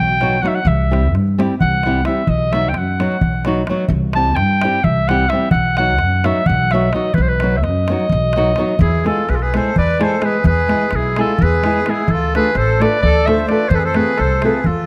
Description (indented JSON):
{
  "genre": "balkan folk, Balkan wedding band",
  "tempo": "257 BPM (eighths)",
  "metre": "7/8",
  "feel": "straight",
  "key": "E phrygian dominant from 8.8 s",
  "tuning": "A4 = 440 Hz",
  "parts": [
    { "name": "bright clarinet", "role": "melody", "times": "0.0-14.9 s", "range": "G#4 to A5", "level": "-21 LUFS", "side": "equal", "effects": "none" },
    { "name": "upright bass", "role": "bass", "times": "0.0-14.9 s", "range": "A1 to G2", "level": "-21 LUFS", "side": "equal", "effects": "none" },
    { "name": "darbuka", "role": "percussion", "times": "0.1-14.8 s", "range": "none", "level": "-23 LUFS", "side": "equal", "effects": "none" },
    { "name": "nylon-string guitar", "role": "accompaniment", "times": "0.2-14.6 s", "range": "F#3 to A4", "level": "-22 LUFS", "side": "equal", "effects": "none" },
    { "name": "accordion", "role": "second line", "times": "8.8-14.9 s", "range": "E4 to C5", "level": "-25 LUFS", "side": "equal", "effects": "none" }
  ],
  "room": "moderate recital hall reverb, RT60 1.5 s",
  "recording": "close, detailed microphones",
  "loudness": "-16 LUFS",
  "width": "mono",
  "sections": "0.0-8.8 A section; 8.8-14.9 B section",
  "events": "clarinet solo 0.0-8.8",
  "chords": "0.0 B; 0.7 C; 2.3 B; 3.9 C; 5.5 B; 8.8 E; 12.1 Dm; 13.7 F"
}